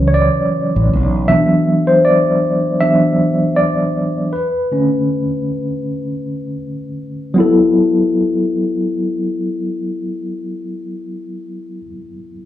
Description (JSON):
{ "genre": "R&B", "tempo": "79 BPM", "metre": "4/4", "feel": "swing 55% on 16ths", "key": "B minor", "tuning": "A4 = 440 Hz", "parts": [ { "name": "tine electric piano", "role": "accompaniment", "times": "0.0-12.5 s", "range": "C#3 to E5", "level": "-15 LUFS", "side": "equal", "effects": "medium tremolo, plate reverb, slapback echo" }, { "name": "mellow fretless electric bass", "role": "bass", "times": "0.0-1.3 s", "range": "A1 to C#2", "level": "-14 LUFS", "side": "equal", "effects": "none" } ], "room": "moderate club reverb, RT60 0.7 s", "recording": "live gig heard through the venue's PA, club reverb", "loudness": "-13 LUFS", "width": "side -12 dB against mid", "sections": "0.0-7.4 A section; 7.4-10.4 B section", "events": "tine electric piano solo 0.0-7.4", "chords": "0.0 Dmaj9; 1.3 D13/E; 4.3 Bm9; 7.4 B5", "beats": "0.53 | 1.29 2.05 2.81 3.57 | 4.33 5.08 5.84 6.60 | 7.36 8.12 8.88 9.64" }